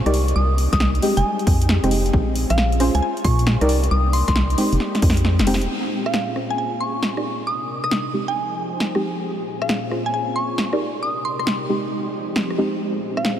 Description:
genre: UK garage, two-step garage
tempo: 135 BPM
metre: 4/4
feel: swing 66% on 16ths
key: Bb dorian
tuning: A4 = 440 Hz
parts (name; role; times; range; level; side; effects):
- mallet-like synth pluck; melody; 0.0-13.3 s; F5 to Eb6; -26 LUFS; equal; chorus, analog delay
- soft string machine; sustained chords; 0.0-13.4 s; Bb2 to D5; -29 LUFS; equal; ensemble chorus, sidechain pumping
- deep mellow chord stab; stabs; 0.1-12.8 s; Ab3 to D5; -25 LUFS; equal; chorus, cassette tape, analog delay
- organ-like FM bass; bass; 0.1-5.7 s; Eb1 to Bb2; -19 LUFS; equal; tube saturation
- house drum kit; drums; 0.1-13.4 s; hi-hat, rim click, snare drum; -26 LUFS; equal; small room reverb
- electronic kick drum; drums; 0.7-5.1 s; none; -22 LUFS; equal; small room reverb
room: moderate huge ambient reverb, RT60 4.4 s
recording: dreamy mix soaked in reverb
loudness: -18 LUFS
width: side -10 dB against mid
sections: 0.0-5.7 A section; 5.7-13.4 B section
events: drum fill 4.8-5.7; kick drops out 5.2-5.7; band accent 5.5; filter sweep on synth stab 5.7-13.4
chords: 0.1 Cm9; 1.0 Fm9; 2.1 Bbm9; 3.7 Cm9; 4.6 Fm9; 5.7 Bbm9; 7.2 Cm9; 8.1 Fm9; 9.2 Bbm9; 10.8 Cm9; 11.7 Fm9; 12.8 Bbm9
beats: | 0.36 0.80 1.25 1.69 | 2.14 2.58 3.02 3.47 | 3.91 4.36 4.80 5.25 | 5.69 6.14 6.58 7.03 | 7.47 7.91 8.36 8.80 | 9.25 9.69 10.14 10.58 | 11.03 11.47 11.91 12.36 | 12.80 13.25

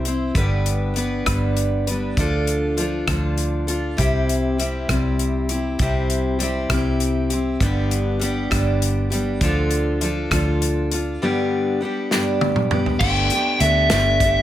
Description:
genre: folk rock and heartland rock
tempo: 66 BPM (dotted quarters)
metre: 6/8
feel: straight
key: unclear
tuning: A4 = 440 Hz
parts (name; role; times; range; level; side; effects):
- picked steel-string acoustic guitar; accompaniment; 0.0-14.4 s; G2 to C5; -22 LUFS; left 1 dB; plate reverb
- vintage muted fingered electric bass; bass; 0.0-14.4 s; G1 to D2; -22 LUFS; equal; none
- natural country drum kit; drums; 0.1-14.3 s; crash cymbal, hi-hat, kick drum, rim click, snare drum, toms; -24 LUFS; equal; none
- biting lead guitar; melody; 13.0-14.4 s; E5 to G5; -18 LUFS; equal; overdrive, plate reverb, analog delay
room: moderate studio reverb, RT60 0.7 s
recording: none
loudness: -18 LUFS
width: side -12 dB against mid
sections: 0.0-13.0 A section; 13.0-14.4 B section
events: drum fill 12.1-13.0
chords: 0.3 G; 2.2 Dm; 4.0 C; 7.6 G; 9.4 Dm; 11.2 G; 13.0 Gadd9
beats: | 0.35 1.26 | 2.17 3.08 | 3.98 4.89 | 5.79 6.70 | 7.60 8.51 | 9.41 10.31 | 11.21 12.11 | 13.01 13.91

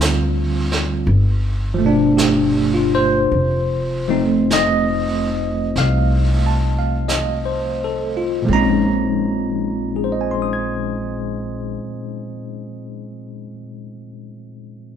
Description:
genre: jazz ballad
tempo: 41-57 BPM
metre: 4/4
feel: swing 67% on 8ths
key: unclear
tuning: A4 = 440 Hz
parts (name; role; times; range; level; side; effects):
- bell-like tine electric piano; accompaniment; 0.0-15.0 s; Bb2 to Ab6; -19 LUFS; equal; slow stereo tremolo
- upright bass; bass; 0.0-11.8 s; F1 to D2; -21 LUFS; equal; none
- vintage brush drum kit; drums; 0.0-9.2 s; brushed snare drum, hi-hat, snare drum; -26 LUFS; right 3 dB; none
room: wet large studio reverb, RT60 1.2 s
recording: band playing live in one room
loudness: -16 LUFS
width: side -8 dB against mid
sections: 0.0-3.3 A section; 3.3-8.5 B section; 8.5-14.4 C section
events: slowing down 0.0-8.5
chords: 0.0 G7sus4/D; 1.1 G7; 3.3 F7; 8.5 Bbm11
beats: 0.00 1.07 2.17 | 3.31 4.50 5.75 7.07 | 8.49 9.96 11.44 12.91

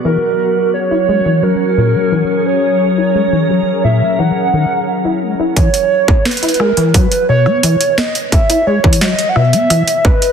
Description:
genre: IDM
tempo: 87 BPM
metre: 4/4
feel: straight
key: E lydian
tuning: A4 = 440 Hz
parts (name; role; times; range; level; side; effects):
- warbly nostalgic lead; melody; 0.0-10.3 s; A#4 to F#5; -15 LUFS; right 2 dB; chorus, tremolo, tape echo
- glassy FM pad; sustained chords; 0.0-5.6 s; F#3 to A#4; -18 LUFS; left 2 dB; ensemble chorus, built-in reverb, vintage 12-bit sampler grit
- deep acid bass; arpeggios; 0.0-9.8 s; A#2 to E4; -16 LUFS; left 2 dB; ensemble chorus, digital delay
- booming analog drum machine; drums; 5.6-10.3 s; hi-hat, rim click, snare drum; -17 LUFS; right 1 dB; low-pass filter on hats, low-pass filter on snare
- electronic kick drum; drums; 5.6-10.2 s; none; -12 LUFS; right 1 dB; distortion
room: moderate echo chamber reverb, RT60 2.2 s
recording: dense, heavily limited modern master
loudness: -11 LUFS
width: side -7 dB against mid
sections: 0.0-5.6 A section; 5.6-10.3 B section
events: none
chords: 0.0 F#; 5.6 E5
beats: | 0.05 0.74 1.43 2.12 | 2.81 3.50 4.19 4.88 | 5.57 6.25 6.95 7.63 | 8.32 9.01 9.70

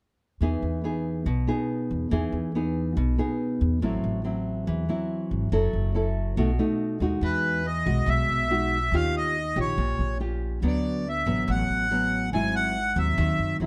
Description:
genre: bossa nova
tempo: 141 BPM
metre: 4/4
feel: straight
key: E major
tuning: A4 = 440 Hz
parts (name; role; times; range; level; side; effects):
- nylon-string guitar; accompaniment; 0.4-13.7 s; G#2 to A4; -30 LUFS; equal; none
- upright bass; bass; 0.4-13.7 s; F#1 to F#2; -30 LUFS; equal; none
- accordion; melody; 7.2-13.6 s; B4 to G#5; -29 LUFS; equal; plate reverb
room: light reverb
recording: none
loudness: -26 LUFS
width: mono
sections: 0.4-7.2 A section; 7.2-13.7 B section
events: none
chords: 0.4 Emaj7; 3.8 Am6; 5.5 F#m7; 6.4 B7; 7.2 Emaj9; 8.9 D#9; 10.6 Dmaj13; 12.3 G#7b13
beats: | 0.41 0.83 1.26 1.69 | 2.11 2.54 2.96 3.39 | 3.82 4.24 4.67 5.09 | 5.52 5.95 6.37 6.80 | 7.22 7.65 8.07 8.50 | 8.92 9.35 9.77 10.20 | 10.62 11.05 11.47 11.90 | 12.32 12.75 13.17 13.60

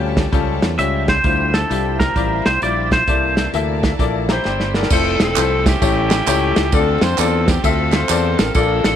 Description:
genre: uptempo gospel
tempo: 131 BPM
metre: 4/4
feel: swing 65% on 8ths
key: unclear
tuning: A4 = 440 Hz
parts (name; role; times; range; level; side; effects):
- bright concert grand piano; accompaniment; 0.0-9.0 s; A2 to Bb5; -21 LUFS; left 12 dB; none
- bright tonewheel organ; sustained chords; 0.0-9.0 s; E3 to G5; -32 LUFS; right 13 dB; slow rotary speaker, overdrive, chorus vibrato
- warm studio string section; sustained chords; 0.0-4.9 s; Bb3 to A5; -33 LUFS; left 1 dB; none
- modern bright fingered electric bass; bass; 0.0-9.0 s; E1 to F2; -21 LUFS; right 1 dB; none
- warm soul drum kit; drums; 0.2-8.9 s; crash cymbal, hi-hat, kick drum, ride cymbal, snare drum; -19 LUFS; right 1 dB; none
- twangy electric guitar; melody; 0.8-3.5 s; A4 to E5; -19 LUFS; right 1 dB; none
- clear saxophone section; melody; 4.3-9.0 s; C4 to C5; -20 LUFS; equal; none
- tambourine and handclaps; percussion; 4.9-8.9 s; none; -25 LUFS; right 16 dB; none
room: light reverb, studio reverb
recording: 1960s-style stereo with parts hard left and right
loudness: -14 LUFS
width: side -9 dB against mid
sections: 0.0-4.9 A section; 4.9-9.0 B section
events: tonewheel organ fill 4.0-4.9; drum fill 4.4-4.9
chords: 0.0 A7b13; 1.2 Dm11; 3.1 C13; 4.9 Fmaj7; 5.8 A7; 6.7 Dm7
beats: 0.33 0.79 | 1.25 1.70 2.16 2.62 | 3.08 3.53 3.99 4.45 | 4.90 5.36 5.82 6.27 | 6.73 7.18 7.64 8.09 | 8.55

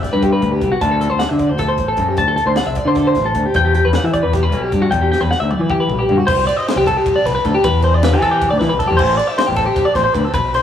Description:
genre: math rock and midwest emo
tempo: 308 BPM (eighths)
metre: 7/8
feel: straight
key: unclear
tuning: A4 = 438 Hz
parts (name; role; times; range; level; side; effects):
- twelve-string electric guitar; arpeggios; 0.0-10.6 s; F#4 to A5; -16 LUFS; left 1 dB; spring reverb
- growling fingered electric bass; bass; 0.0-10.6 s; A1 to E3; -17 LUFS; left 1 dB; overdrive
- crisp fusion drum kit; drums; 0.0-10.6 s; crash cymbal, hi-hat, kick drum, ride cymbal, snare drum, toms; -23 LUFS; equal; none
room: moderate booth ambience, RT60 0.3 s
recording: rough rehearsal-room recording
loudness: -13 LUFS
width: side -9 dB against mid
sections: 0.0-6.3 A section; 6.3-10.6 B section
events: drum fill 5.1-6.3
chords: 0.0 Gmaj7; 0.8 D7; 3.6 Em; 6.3 Csus2; 7.6 Em7; 9.0 Am7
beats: 0.03 0.23 0.43 0.62 | 0.82 1.01 1.21 1.41 1.60 1.80 1.99 | 2.19 2.38 2.58 2.77 2.97 3.17 3.36 | 3.56 3.75 3.95 4.14 4.34 4.53 4.73 | 4.92 5.12 5.31 5.51 5.70 5.90 6.09 | 6.28 6.48 6.67 6.87 7.06 7.25 7.45 | 7.64 7.83 8.02 8.22 8.41 8.60 8.79 | 8.99 9.18 9.37 9.57 9.76 9.95 10.14 | 10.34 10.53

